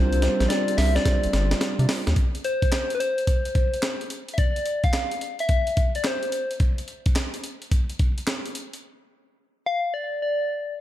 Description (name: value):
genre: R&B, new jack swing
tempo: 108 BPM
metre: 4/4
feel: swing 65% on 16ths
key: unclear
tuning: A4 = 440 Hz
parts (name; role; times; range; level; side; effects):
- soft struck synth lead; melody; 0.0-10.7 s; B4 to F5; -26 LUFS; left 2 dB; chorus
- mellow tine electric piano; accompaniment; 0.0-2.2 s; G3 to C5; -28 LUFS; right 5 dB; none
- dark brass ensemble; sustained chords; 0.0-2.1 s; C3 to F4; -36 LUFS; left 2 dB; none
- round analog bass; bass; 0.0-2.1 s; G1 to C3; -21 LUFS; equal; none
- breakbeat sampler-style drum kit; drums; 0.1-8.8 s; handclaps, hi-hat, kick drum, snare drum; -24 LUFS; equal; none
room: little or no reverb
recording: none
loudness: -22 LUFS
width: side -13 dB against mid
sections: 0.0-2.2 A section; 2.2-10.8 B section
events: drum fill 0.0-2.2; break 8.8-10.8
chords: 0.0 C9sus4; 2.2 N.C.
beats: 0.49 1.05 1.61 | 2.16 2.72 3.27 3.83 | 4.38 4.94 5.50 6.05 | 6.61 7.16 7.72 8.27 | 8.83 9.38 9.94 10.49